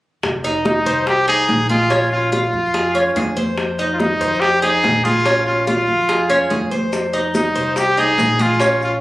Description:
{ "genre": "latin, Cuban son and guajira", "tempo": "143 BPM", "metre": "4/4", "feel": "straight", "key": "F minor", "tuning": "A4 = 441 Hz", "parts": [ { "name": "upright bass", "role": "bass", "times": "0.2-9.0 s", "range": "F1 to F2", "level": "-26 LUFS", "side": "equal", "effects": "none" }, { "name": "bongos", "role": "percussion", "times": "0.2-9.0 s", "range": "none", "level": "-25 LUFS", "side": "left 2 dB", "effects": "none" }, { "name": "congas", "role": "percussion", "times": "0.2-9.0 s", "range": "none", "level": "-24 LUFS", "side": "equal", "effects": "none" }, { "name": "Cuban tres", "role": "arpeggios", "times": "0.4-9.0 s", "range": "Db4 to C5", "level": "-20 LUFS", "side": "equal", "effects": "none" }, { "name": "brilliant trumpet", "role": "melody", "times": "0.7-8.9 s", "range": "Eb4 to Ab4", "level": "-17 LUFS", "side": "equal", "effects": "none" }, { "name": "maracas", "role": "percussion", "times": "6.9-9.0 s", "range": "none", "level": "-34 LUFS", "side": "left 1 dB", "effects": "none" } ], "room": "moderate studio reverb, RT60 0.8 s", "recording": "recorded on a phone in the room, club reverb", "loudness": "-14 LUFS", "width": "side -17 dB against mid", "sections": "0.2-9.0 A section", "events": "none", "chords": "0.2 Fm7; 1.9 Bbm7; 3.6 Fm7; 5.3 Bbm7; 6.9 Fm7" }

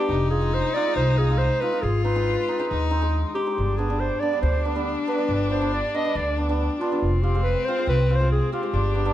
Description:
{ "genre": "klezmer", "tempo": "139 BPM", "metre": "4/4", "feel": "straight", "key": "unclear", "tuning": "A4 = 440 Hz", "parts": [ { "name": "mellow clarinet", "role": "melody", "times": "0.0-9.1 s", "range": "F4 to Eb5", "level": "-26 LUFS", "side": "right 1 dB", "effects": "none" }, { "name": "rich violin", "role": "second line", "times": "0.0-9.1 s", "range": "C4 to F4", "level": "-29 LUFS", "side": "left 5 dB", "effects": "none" }, { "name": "hammered dulcimer", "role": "accompaniment", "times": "0.0-9.1 s", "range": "G3 to F4", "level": "-28 LUFS", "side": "right 1 dB", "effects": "none" }, { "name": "upright bass", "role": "bass", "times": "0.1-9.1 s", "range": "F1 to Eb2", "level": "-23 LUFS", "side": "equal", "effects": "none" } ], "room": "moderate studio reverb, RT60 0.6 s", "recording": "dark, warm production", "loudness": "-20 LUFS", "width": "side -12 dB against mid", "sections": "0.0-9.1 A section", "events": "none", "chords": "0.1 Fm; 1.8 Ab; 3.6 G; 7.0 Fm" }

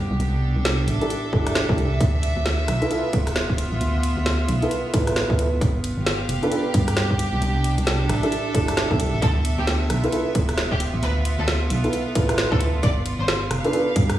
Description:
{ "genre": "UK garage, two-step garage", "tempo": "133 BPM", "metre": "4/4", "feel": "swing 61% on 16ths", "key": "D dorian", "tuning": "A4 = 440 Hz", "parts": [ { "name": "rich chamber string section", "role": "texture", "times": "0.0-14.2 s", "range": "B3 to F5", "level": "-27 LUFS", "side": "right 1 dB", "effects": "sidechain pumping" }, { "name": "organ-like FM bass", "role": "bass", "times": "0.1-14.2 s", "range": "D1 to G2", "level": "-23 LUFS", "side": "equal", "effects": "none" }, { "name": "garage drum kit", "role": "drums", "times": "0.2-14.2 s", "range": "hi-hat, rim click, snare drum", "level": "-26 LUFS", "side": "equal", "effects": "none" }, { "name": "dark grand piano", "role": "stabs", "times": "1.0-13.9 s", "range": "D4 to B4", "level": "-25 LUFS", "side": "right 1 dB", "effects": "low-pass filter, tape echo" }, { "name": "electronic kick drum", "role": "drums", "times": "1.3-14.1 s", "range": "none", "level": "-22 LUFS", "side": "equal", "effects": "none" }, { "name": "clear studio violin section", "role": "melody", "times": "9.2-13.3 s", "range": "G4 to D5", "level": "-30 LUFS", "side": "equal", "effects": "digital delay" } ], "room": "light reverb, small room ambience", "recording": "played on a big sound system in a bare room, large studio reverb", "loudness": "-19 LUFS", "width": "side -13 dB against mid", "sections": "0.0-14.2 A section", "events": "none", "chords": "0.0 C69; 2.0 Dm69; 5.6 G7; 7.2 C69; 9.2 Dm69; 12.8 G7" }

